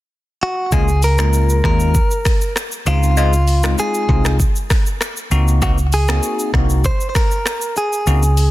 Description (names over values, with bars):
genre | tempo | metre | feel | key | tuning
afrobeats | 98 BPM | 4/4 | straight | Db major | A4 = 440 Hz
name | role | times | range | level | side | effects
direct-recorded clean electric guitar | melody | 0.4-8.5 s | F4 to C5 | -21 LUFS | equal | ping-pong delay
bell-like tine electric piano | accompaniment | 0.7-8.2 s | Ab3 to Gb4 | -23 LUFS | left 3 dB | phaser
hollow-body short-scale fingered electric bass | bass | 0.7-8.5 s | C2 to Eb2 | -14 LUFS | equal | none
afro-pop drum kit | drums | 0.7-8.5 s | finger snaps, hi-hat, kick drum, rim click, shaker | -19 LUFS | equal | soft clipping on snare
room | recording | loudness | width
digital ambience | dense, heavily limited modern master | -14 LUFS | side -16 dB against mid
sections
0.7-8.5 A section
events
none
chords
0.0 N.C.; 0.7 Db69; 2.9 Dbmaj7; 5.3 Ab7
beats
0.11 | 0.72 1.33 1.95 2.56 | 3.17 3.78 4.40 5.01 | 5.62 6.23 6.84 7.46 | 8.07